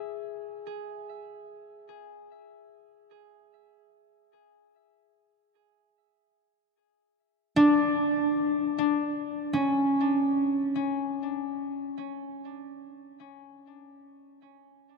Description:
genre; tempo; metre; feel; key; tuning
ambient; free time; none; none; unclear; A4 = 440 Hz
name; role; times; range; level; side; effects
concert harp; arpeggios; 0.0-0.5, 7.6-14.2 s; C#4 to G#4; -26 LUFS; left 1 dB; ping-pong delay
room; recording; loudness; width
wet cathedral reverb, RT60 6.0 s; in a vast, echoing space; -25 LUFS; side -4 dB against mid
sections
0.0-9.5 A section; 9.5-12.8 B section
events
none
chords
none

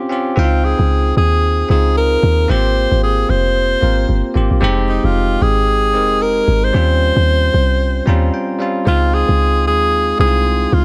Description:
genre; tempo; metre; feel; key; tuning
amapiano; 113 BPM; 4/4; swing 58% on 16ths; unclear; A4 = 440 Hz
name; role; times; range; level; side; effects
bell-like tine electric piano; accompaniment; 0.0-10.8 s; G3 to Bb5; -22 LUFS; equal; none
breathy alto saxophone; melody; 0.4-10.8 s; Eb4 to C5; -19 LUFS; equal; digital delay
deep log drum bass; bass; 0.4-10.8 s; F1 to Eb2; -17 LUFS; equal; none
room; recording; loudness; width
little or no reverb; none; -15 LUFS; mono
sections
0.0-10.8 A section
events
tine electric piano fill 7.8-8.9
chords
0.4 Dbmaj9#11; 2.5 Abmaj13; 4.6 Fm7; 6.7 Eb13; 8.9 Dbmaj9

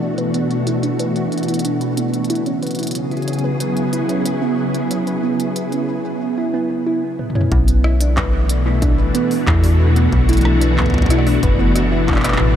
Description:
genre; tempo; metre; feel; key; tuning
IDM; 92 BPM; 4/4; straight; B dorian; A4 = 440 Hz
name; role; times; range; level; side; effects
soft string machine; sustained chords; 0.0-12.6 s; B2 to G#4; -20 LUFS; left 1 dB; ensemble chorus
harp-like synth pluck; arpeggios; 0.0-12.6 s; B3 to B4; -21 LUFS; right 2 dB; chorus, phaser, tape echo
industrial drum kit; drums; 0.2-12.4 s; handclaps, hi-hat, rim click, toms; -25 LUFS; equal; low-pass filter on snare, low-pass filter on hats, low-pass filter on toms, tape echo
metallic FM bass; bass; 7.5-12.6 s; F#1 to E2; -16 LUFS; equal; none
electronic kick drum; drums; 7.5-12.2 s; none; -19 LUFS; equal; distortion
room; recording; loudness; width
moderate huge ambient reverb, RT60 7.6 s; dreamy mix soaked in reverb; -15 LUFS; side -10 dB against mid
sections
0.0-7.5 A section; 7.5-12.6 B section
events
filter sweep on drum 0.0-7.5; filter sweep on string machine 0.0-7.5; filter sweep on synth pluck 0.0-7.5; drum fill 7.0-7.5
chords
0.0 Bm; 2.3 C#m7; 7.5 Bm

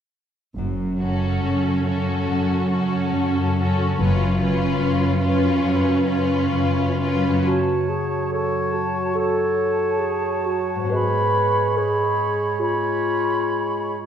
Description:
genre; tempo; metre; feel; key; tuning
classical, slow romantic movement for symphony orchestra; 70 BPM; 4/4; uneven beats, rubato; F# minor; A4 = 440 Hz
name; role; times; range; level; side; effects
concert harp; arpeggios; 0.6-14.1 s; F#2 to A4; -26 LUFS; left 3 dB; none
rich symphonic cello section; bass; 0.6-7.4 s; F#2; -24 LUFS; right 2 dB; none
rich symphonic double bass section; bass; 0.6-4.7 s; F#1; -27 LUFS; right 1 dB; none
warm symphonic violin section; melody; 1.0-7.5 s; A4 to B4; -29 LUFS; left 7 dB; none
rich studio violin section; second line; 1.0-7.5 s; E#4 to F#4; -29 LUFS; left 2 dB; none
clear symphonic viola section; accompaniment; 1.0-7.5 s; C#4; -24 LUFS; right 2 dB; none
dark clarinet; second line; 7.5-14.0 s; E#4 to B4; -24 LUFS; left 1 dB; none
silver concert flute; second line; 7.5-14.0 s; A5 to B5; -26 LUFS; equal; none
warm oboe; second line; 7.5-14.0 s; C#5; -28 LUFS; right 2 dB; none
dark bassoon; accompaniment; 7.5-14.0 s; F#3 to G#3; -26 LUFS; right 4 dB; none
room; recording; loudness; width
wet recital hall reverb, RT60 1.2 s; heard from further back in the room; -19 LUFS; side -8 dB against mid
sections
0.6-7.5 A section; 7.5-14.1 B section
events
none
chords
0.6 F#m; 10.9 C#7/G#

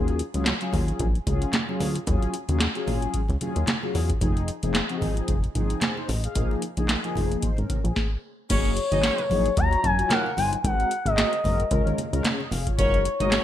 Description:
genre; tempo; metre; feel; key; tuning
early-eighties boogie funk; 112 BPM; 4/4; swing 56% on 16ths; Eb dorian; A4 = 440 Hz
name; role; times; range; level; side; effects
mellow synth brass; accompaniment; 0.0-13.4 s; F3 to F5; -29 LUFS; left 2 dB; chorus
chorused synth bass; bass; 0.0-13.4 s; F1 to Gb2; -26 LUFS; equal; none
booming analog drum machine; drums; 0.1-13.4 s; crash cymbal, handclaps, hi-hat, kick drum, snare drum; -26 LUFS; equal; gated reverb
congas; percussion; 0.1-13.4 s; none; -37 LUFS; right 2 dB; none
gliding portamento lead; melody; 8.5-13.4 s; Db5 to Bb5; -24 LUFS; left 2 dB; chorus
warm horn section; second line; 8.5-13.4 s; Bb3 to Eb5; -31 LUFS; right 4 dB; none
room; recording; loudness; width
light reverb; bright 1980s-style digital production; -22 LUFS; side -11 dB against mid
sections
0.0-8.5 A section; 8.5-13.4 B section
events
stop 8.0-8.5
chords
0.0 Ebm11; 4.2 Fm7; 6.4 Bb7sus4; 8.5 Gb69; 9.6 Ebm9; 10.6 Ab9; 11.7 Db6; 12.8 Gb69

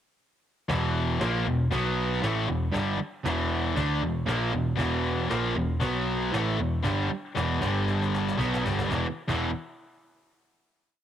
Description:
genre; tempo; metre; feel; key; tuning
hard rock; 117 BPM; 4/4; straight; E minor; A4 = 440 Hz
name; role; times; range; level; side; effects
distorted electric guitar; riff; 0.7-9.5 s; E2 to D4; -29 LUFS; left 7 dB; overdrive
overdriven semi-hollow guitar; riff; 0.7-9.5 s; E2 to D4; -29 LUFS; right 6 dB; none
hollow-body short-scale picked electric bass; bass; 0.7-9.5 s; E1 to D2; -31 LUFS; equal; none
cajon; drums; 0.7-9.4 s; none; -36 LUFS; left 1 dB; cassette tape
room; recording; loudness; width
light reverb, digital ambience; home recording on cassette; -25 LUFS; side -10 dB against mid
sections
0.7-8.9 riff; 8.9-11.0 final chord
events
drum fill 7.9-8.9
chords
0.7 E5; 1.7 B5; 2.2 Em; 5.8 B5; 6.3 Em; 7.6 G5; 8.4 Gmaj7; 8.9 E5

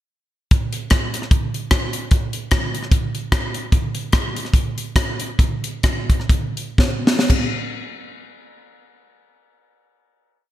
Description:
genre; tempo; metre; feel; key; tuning
gospel; 113-150 BPM; 4/4; swing 56% on 8ths; none; none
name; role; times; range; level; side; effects
crisp fusion drum kit; drums; 0.5-7.4 s; crash cymbal, hi-hat, kick drum, rim click, snare drum; -18 LUFS; equal; gated reverb
room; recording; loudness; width
light reverb; bright 1980s-style digital production; -18 LUFS; side -13 dB against mid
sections
0.5-7.3 breakdown; 7.3-10.5 final hit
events
slowing down 3.7-7.3; drum fill 6.8-7.3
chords
none

